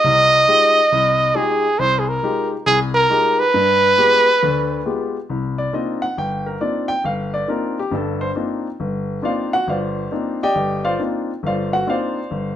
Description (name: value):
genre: jazz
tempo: 137 BPM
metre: 4/4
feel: swing 67% on 8ths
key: C minor from 5.3 s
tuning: A4 = 440 Hz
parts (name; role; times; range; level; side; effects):
- mellow trumpet; melody; 0.0-5.1 s; Ab4 to Eb5; -14 LUFS; right 1 dB; plate reverb
- warm baby grand piano; accompaniment; 0.0-12.6 s; G1 to G5; -20 LUFS; left 2 dB; none
room: moderate studio reverb, RT60 0.8 s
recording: none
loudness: -16 LUFS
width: side -10 dB against mid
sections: 0.0-5.3 A section; 5.3-12.6 B section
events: none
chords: 0.0 Fm9; 3.5 G7b9; 5.3 Cm11